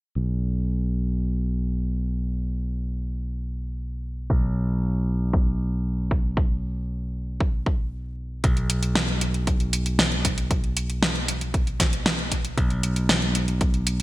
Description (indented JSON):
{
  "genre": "synthwave",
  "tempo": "116 BPM",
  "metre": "4/4",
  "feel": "straight",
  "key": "unclear",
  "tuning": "A4 = 439 Hz",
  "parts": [
    { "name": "modern bright picked electric bass", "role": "bass", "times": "0.2-14.0 s", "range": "B1", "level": "-25 LUFS", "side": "equal", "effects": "low-pass filter" },
    { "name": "electronic kick drum", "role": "drums", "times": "4.3-13.7 s", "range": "none", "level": "-23 LUFS", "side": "equal", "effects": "studio reverb" },
    { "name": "pop drum kit", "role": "drums", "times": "8.4-14.0 s", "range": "hi-hat, snare drum", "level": "-24 LUFS", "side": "equal", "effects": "low-pass filter on hats, studio reverb, low-pass filter on snare, gated reverb" }
  ],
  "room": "light reverb, digital ambience",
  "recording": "bright 1980s-style digital production, low-pass filter",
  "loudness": "-22 LUFS",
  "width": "side -18 dB against mid",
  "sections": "0.2-8.4 A section; 8.4-14.0 B section",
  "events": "filter sweep on picked electric bass 0.2-8.4; filter sweep 0.2-8.4",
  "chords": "none"
}